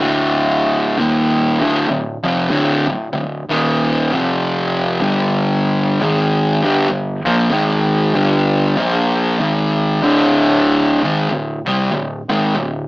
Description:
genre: metal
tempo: 96 BPM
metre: 4/4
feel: swing 59% on 8ths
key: unclear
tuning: A4 = 440 Hz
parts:
  - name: fuzz guitar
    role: solo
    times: 0.0-12.8 s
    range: D2 to C4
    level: -14 LUFS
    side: equal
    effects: distortion
room: moderate studio reverb, RT60 0.6 s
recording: rough rehearsal-room recording, tube saturation, small speaker sound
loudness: -14 LUFS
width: side -21 dB against mid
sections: 0.0-10.0 A section; 10.0-12.9 B section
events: none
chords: 0.0 D5; 0.9 Eb5; 1.6 Dm; 3.4 Eb5; 4.1 F5; 5.0 G5; 6.0 G#5; 6.6 G5; 7.5 G#5; 8.2 G5; 8.8 Bb5; 9.4 G#5; 10.0 D5

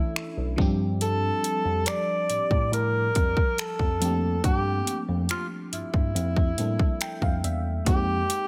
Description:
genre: contemporary R&B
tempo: 70 BPM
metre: 4/4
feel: straight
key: unclear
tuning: A4 = 441 Hz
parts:
  - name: breathy alto saxophone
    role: melody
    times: 0.0-8.5 s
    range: E4 to D5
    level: -30 LUFS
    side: equal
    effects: tape echo
  - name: FM electric piano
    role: accompaniment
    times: 0.0-8.5 s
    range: E3 to G5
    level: -34 LUFS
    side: equal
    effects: chorus, phaser
  - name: trap drum kit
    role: drums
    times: 0.2-8.5 s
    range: finger snaps, hi-hat, kick drum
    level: -28 LUFS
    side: equal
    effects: none
  - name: bell-like tine electric piano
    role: bass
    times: 0.4-8.2 s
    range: B1 to A2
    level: -30 LUFS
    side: equal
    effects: none
room: digital ambience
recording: none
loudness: -25 LUFS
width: mono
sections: 0.0-8.5 A section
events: FM electric piano fill 6.6-7.9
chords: 0.0 Bm11; 0.6 Gm11; 7.9 Fm11

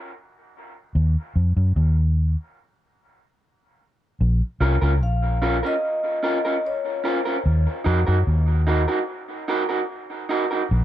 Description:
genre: dub reggae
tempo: 74 BPM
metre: 4/4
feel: straight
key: unclear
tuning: A4 = 441 Hz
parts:
  - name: vintage muted fingered electric bass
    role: bass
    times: 1.0-10.8 s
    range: Bb1 to Gb2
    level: -18 LUFS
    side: equal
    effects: none
  - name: electric guitar through a small old amp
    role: accompaniment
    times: 4.6-10.6 s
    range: Db4 to Bb4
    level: -24 LUFS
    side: right 2 dB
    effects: dub echo
  - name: vibraphone with soft mallets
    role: melody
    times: 5.0-7.4 s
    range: C5 to F5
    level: -28 LUFS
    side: left 1 dB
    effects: dub echo
room: light reverb, studio reverb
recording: echo-heavy mix, tape saturation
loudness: -20 LUFS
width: side -12 dB against mid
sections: 0.0-10.8 A section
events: break 0.0-4.2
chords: 0.0 N.C.; 4.2 Bbm; 7.5 Ebm

